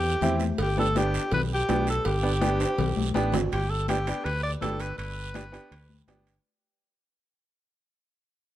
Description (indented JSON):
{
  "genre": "latin, cumbia",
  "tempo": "164 BPM",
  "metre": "4/4",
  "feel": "straight",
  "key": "G major",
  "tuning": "A4 = 440 Hz",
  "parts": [
    { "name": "breathy alto saxophone", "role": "melody", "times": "0.0-6.0 s", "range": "G4 to D5", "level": "-29 LUFS", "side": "equal", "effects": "none" },
    { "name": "fingered electric bass", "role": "bass", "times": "0.0-6.4 s", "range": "G1 to E2", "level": "-29 LUFS", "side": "equal", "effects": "none" },
    { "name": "bright upright piano", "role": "accompaniment", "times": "0.2-6.3 s", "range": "B3 to G4", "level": "-31 LUFS", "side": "right 2 dB", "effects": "none" },
    { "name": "congas", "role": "percussion", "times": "0.2-6.3 s", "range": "none", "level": "-32 LUFS", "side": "left 6 dB", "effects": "none" },
    { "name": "guiro", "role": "percussion", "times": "0.2-6.5 s", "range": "none", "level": "-41 LUFS", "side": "right 7 dB", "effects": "none" },
    { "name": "cowbell and timbales", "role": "percussion", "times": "0.6-6.5 s", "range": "none", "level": "-34 LUFS", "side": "right 4 dB", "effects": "none" }
  ],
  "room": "light reverb",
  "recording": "none",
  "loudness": "-24 LUFS",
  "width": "side -13 dB against mid",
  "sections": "0.0-3.5 A section; 3.5-6.4 B section",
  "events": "drum fill 2.6-3.5; fade-out 3.5-6.4",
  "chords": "0.0 C; 0.6 G",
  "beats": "0.22 | 0.58 0.95 1.32 1.68 | 2.05 2.42 2.78 3.15 | 3.52 3.88 4.25 4.61 | 4.98 5.35 5.71 6.08"
}